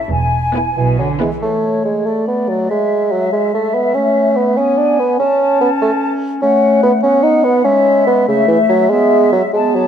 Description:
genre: quick classical-period movement for symphony orchestra.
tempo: 96 BPM (dotted quarters).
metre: 6/8.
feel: rubato.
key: A major, E major from 6.4 s.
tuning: A4 = 439 Hz.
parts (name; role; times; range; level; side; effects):
warm studio violin section; melody; 0.0-1.4 s; B4; -35 LUFS; left 8 dB; none.
bright large flute ensemble; second line; 0.0-9.9 s; C#5 to A5; -20 LUFS; left 4 dB; none.
warm chamber violin section; second line; 0.0-1.4 s; E4; -30 LUFS; left 2 dB; none.
rich chamber viola section; accompaniment; 0.0-1.4 s; B3; -28 LUFS; right 2 dB; none.
rich chamber cello section; bass; 0.1-1.4 s; E2 to E3; -22 LUFS; right 3 dB; none.
warm chamber double bass section; bass; 0.1-1.3 s; E1 to B1; -21 LUFS; right 3 dB; none.
dark bassoon; accompaniment; 0.8-9.9 s; C#3 to D#4; -13 LUFS; right 1 dB; none.
mellow clarinet; second line; 1.4-9.9 s; G#3 to C#4; -19 LUFS; equal; none.
room: moderate concert hall reverb, RT60 2.4 s.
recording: none.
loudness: -12 LUFS.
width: side -8 dB against mid.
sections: 0.0-1.4 A section; 1.4-9.9 B section.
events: none.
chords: 0.1 E; 1.4 A; 2.1 Bm7; 2.7 E; 4.0 A; 4.6 Bm69; 5.2 A; 6.4 F#m/A; 7.0 B5; 7.7 E/G#; 8.3 A5/C#; 8.9 E/G#.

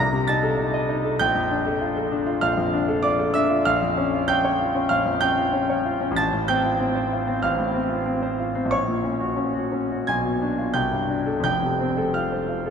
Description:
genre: classical, romantic character piece for solo piano.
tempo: 82-101 BPM.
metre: 4/4.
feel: rubato.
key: unclear.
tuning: A4 = 437 Hz.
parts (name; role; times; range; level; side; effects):
bright concert grand piano; solo; 0.0-12.7 s; F1 to Bb6; -20 LUFS; equal; none.
room: wet cathedral reverb, RT60 7.0 s.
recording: in a vast, echoing space.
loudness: -20 LUFS.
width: side -7 dB against mid.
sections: 0.0-12.7 A section.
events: none.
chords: 0.0 Adim/C; 1.2 Bbmaj7; 3.7 Bbm; 6.2 F/A; 8.7 Gb/Bb; 10.1 Bdim7; 10.7 Csus2; 11.4 F.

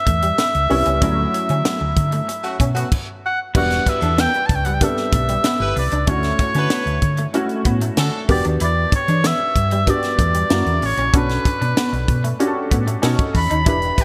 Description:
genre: polished 1980s jazz-funk pop.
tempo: 95 BPM.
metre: 4/4.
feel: straight.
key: E dorian.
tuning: A4 = 440 Hz.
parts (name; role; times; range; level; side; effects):
clear oboe; melody; 0.0-14.0 s; B4 to B5; -24 LUFS; equal; delay.
warm baby grand piano; accompaniment; 0.0-14.0 s; C#3 to B4; -26 LUFS; equal; analog chorus.
electric guitar through a small old amp; riff; 0.1-14.0 s; G3 to E4; -31 LUFS; equal; analog chorus.
hollow-body short-scale fingered electric bass; bass; 0.1-13.9 s; E1 to E3; -23 LUFS; equal; none.
crisp fusion drum kit; drums; 0.1-14.0 s; crash cymbal, hi-hat, kick drum, snare drum; -24 LUFS; equal; none.
warm horn section; second line; 2.4-8.2, 14.0 s; A3 to C#5; -31 LUFS; equal; none.
room: moderate lush hall reverb, RT60 2.5 s.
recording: bright 1980s-style digital production.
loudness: -18 LUFS.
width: mono.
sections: 0.0-3.5 A section; 3.5-14.0 B section.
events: band accent 1.0-3.5.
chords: 0.0 A9 (rootless); 1.0 Dmaj9; 2.9 N.C.; 3.5 Em7; 6.1 Dmaj7; 8.3 Em7; 10.5 F#7; 11.1 Bm9; 13.0 B7.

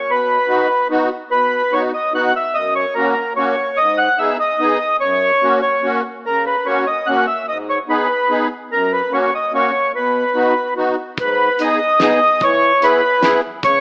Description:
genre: alpine folk, alpine dance band.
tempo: 146 BPM.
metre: 3/4.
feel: straight.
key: B major.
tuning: A4 = 440 Hz.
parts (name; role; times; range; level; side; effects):
mellow accordion; melody; 0.0-13.8 s; A#4 to F#5; -15 LUFS; equal; none.
musette accordion; accompaniment; 0.1-13.8 s; F#2 to G#4; -20 LUFS; equal; none.
loose indie drum kit; drums; 11.2-13.7 s; hi-hat, kick drum, snare drum; -24 LUFS; equal; none.
room: moderate recital hall reverb, RT60 1.7 s.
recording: AM radio sound.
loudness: -14 LUFS.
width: side -29 dB against mid.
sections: 0.0-1.3 A section; 1.3-11.2 A section; 11.2-13.8 B section.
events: none.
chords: 0.1 B; 2.6 F#; 3.8 G#m; 5.0 F#; 7.5 G#m; 8.7 F#; 9.9 B; 11.2 G#m; 12.4 E.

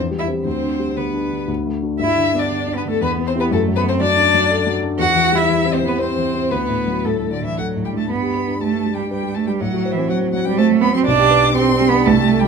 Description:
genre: quick classical-period movement for piano trio.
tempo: 112-124 BPM.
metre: 3/4.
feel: rubato.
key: G major.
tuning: A4 = 442 Hz.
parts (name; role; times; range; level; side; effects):
rich cello; second line; 0.0-12.5 s; D3 to F#4; -19 LUFS; right 8 dB; none.
dark grand piano; accompaniment; 0.0-12.5 s; B1 to C5; -20 LUFS; left 3 dB; none.
rich violin; melody; 0.2-12.5 s; A4 to D6; -22 LUFS; left 7 dB; none.
room: moderate large studio reverb, RT60 0.9 s.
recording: minimal, uncompressed stereo recording.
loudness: -15 LUFS.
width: side -6 dB against mid.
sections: 0.0-8.1 A section; 8.1-12.5 B section.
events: none.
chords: 0.5 G/D; 1.5 D; 2.0 G; 3.0 Em; 3.5 D/F#; 5.0 C/E; 6.5 D; 8.1 G; 9.6 F#dim/A; 11.1 G/B.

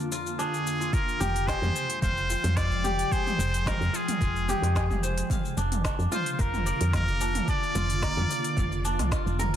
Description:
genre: organic downtempo.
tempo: 110 BPM.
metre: 4/4.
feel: straight.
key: F dorian.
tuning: A4 = 440 Hz.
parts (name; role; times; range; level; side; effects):
ethereal airy pad; sustained chords; 0.0-9.6 s; F2 to G5; -35 LUFS; equal; ensemble chorus, built-in reverb, sidechain pumping.
kora; arpeggios; 0.0-9.6 s; D4 to F5; -32 LUFS; left 1 dB; tape echo.
bronze singing bowl; texture; 0.0-0.9 s; none; barely audible; none; none.
organic electronic drum kit; drums; 0.1-9.6 s; cabasa, hi-hat, snare drum, toms; -33 LUFS; right 1 dB; none.
trumpet with straight mute; melody; 0.4-9.1 s; Ab4 to D5; -31 LUFS; equal; vintage 12-bit sampler grit, tape echo.
electronic kick drum; drums; 0.9-9.2 s; none; -30 LUFS; equal; overdrive.
woody FM bass; bass; 1.2-9.6 s; F1 to F2; -28 LUFS; equal; sidechain pumping.
room: light reverb.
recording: dense, heavily limited modern master.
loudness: -24 LUFS.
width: side -10 dB against mid.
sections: 0.9-9.6 A section.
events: none.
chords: 0.0 Bb/F; 0.9 Fmadd9; 5.3 Bb/F.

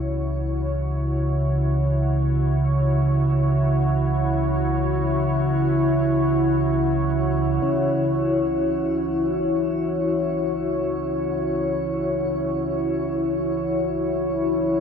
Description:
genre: dark ambient drone.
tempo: free time.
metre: none.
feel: none.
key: C# minor.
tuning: A4 = 440 Hz.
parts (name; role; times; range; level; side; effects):
deep dark ambient pad; sustained chords; 0.0-14.8 s; E4 to C#5; -23 LUFS; left 1 dB; chorus, built-in reverb, shimmer reverb.
deep rumbling drone; drone; 0.0-14.8 s; C#2 to C#3; -23 LUFS; right 1 dB; built-in reverb.
bronze singing bowl; texture; 7.6-14.8 s; C#4 to C#5; -32 LUFS; left 3 dB; shimmer reverb.
room: wet cathedral reverb, RT60 5.9 s.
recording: dark, warm production.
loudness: -20 LUFS.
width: side -7 dB against mid.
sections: 0.0-7.6 A section; 7.6-14.8 A section.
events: filter sweep on synth drone 0.0-7.6; fade-in on synth drone 7.6-14.8.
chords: 0.0 C#m.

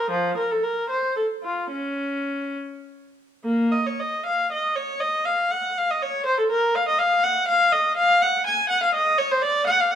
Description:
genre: classical, baroque-style suite movement for unaccompanied viola.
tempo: 63-84 BPM (dotted quarters).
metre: 6/8.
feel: rubato.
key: unclear.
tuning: A4 = 440 Hz.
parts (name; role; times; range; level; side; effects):
rich viola; solo; 0.0-10.0 s; F3 to Ab5; -20 LUFS; equal; none.
room: moderate recital hall reverb, RT60 1.6 s.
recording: close, detailed microphones.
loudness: -20 LUFS.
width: side -9 dB against mid.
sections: 0.0-3.5 A section; 3.5-10.0 B section.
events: none.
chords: none.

